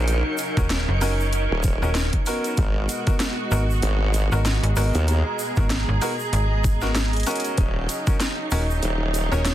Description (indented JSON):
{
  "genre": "glitch hop",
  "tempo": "96 BPM",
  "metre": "4/4",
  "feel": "swing 58% on 16ths",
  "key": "Eb minor",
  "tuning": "A4 = 440 Hz",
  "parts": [
    { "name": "clear studio string section", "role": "sustained chords", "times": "0.0-9.5 s", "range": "Cb3 to Ab4", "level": "-30 LUFS", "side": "right 2 dB", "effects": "sidechain pumping" },
    { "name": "bright grand piano", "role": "stabs", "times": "0.0-9.4 s", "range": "Cb4 to Bb4", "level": "-30 LUFS", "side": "left 1 dB", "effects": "sidechain pumping, digital delay" },
    { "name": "formant-sweep wobble bass", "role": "bass", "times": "0.0-9.3 s", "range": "Eb1 to Eb2", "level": "-22 LUFS", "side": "equal", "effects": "chorus, tube saturation" },
    { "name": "granular cloud pad", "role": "texture", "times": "0.0-9.5 s", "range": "Eb4 to Bb5", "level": "-31 LUFS", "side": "right 2 dB", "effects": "built-in reverb, sidechain pumping" },
    { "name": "drum and bass drum kit", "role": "drums", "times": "0.1-9.5 s", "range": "hi-hat, rim click, snare drum", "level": "-27 LUFS", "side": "equal", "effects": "overdrive" },
    { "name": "egg shaker", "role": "percussion", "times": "0.1-9.5 s", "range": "none", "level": "-37 LUFS", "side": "right 2 dB", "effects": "none" },
    { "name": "slap-like FM bass", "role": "bass", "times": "0.6-9.5 s", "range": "Eb1 to Ab1", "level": "-22 LUFS", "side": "equal", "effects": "none" },
    { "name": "electronic kick drum", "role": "drums", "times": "0.6-8.2 s", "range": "none", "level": "-22 LUFS", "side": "equal", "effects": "overdrive" },
    { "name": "plucky unison lead", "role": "melody", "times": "9.3-9.5 s", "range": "Db5", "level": "-28 LUFS", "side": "equal", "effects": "cassette tape" }
  ],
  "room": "light reverb",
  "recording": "dense, heavily limited modern master, vinyl crackle",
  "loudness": "-20 LUFS",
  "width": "side -13 dB against mid",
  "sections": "0.0-9.5 A section",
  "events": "kick drops out 7.0-7.6",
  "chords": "0.0 Ebm7; 2.6 Abm7; 7.6 Ebm7"
}